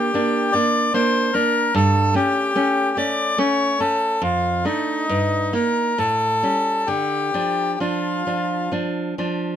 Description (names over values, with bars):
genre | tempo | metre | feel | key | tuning
romantic duo for bandoneon and classical guitar | 65-75 BPM | 3/4 | rubato | D minor | A4 = 444 Hz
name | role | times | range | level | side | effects
bandoneon | melody | 0.0-8.7 s | Eb4 to D5 | -20 LUFS | left 2 dB | none
nylon-string guitar | accompaniment | 0.0-9.6 s | F2 to Eb4 | -22 LUFS | right 1 dB | none
room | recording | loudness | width
little or no reverb | close, detailed microphones | -18 LUFS | side -9 dB against mid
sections
0.0-9.6 A section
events
none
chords
0.0 Gm; 1.7 A7/G; 4.2 Dm/F; 5.1 Eb/G; 6.0 A7; 6.9 Dm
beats
0.14 0.94 | 1.75 2.56 3.38 | 4.22 5.09 5.98 | 6.88 7.80 8.72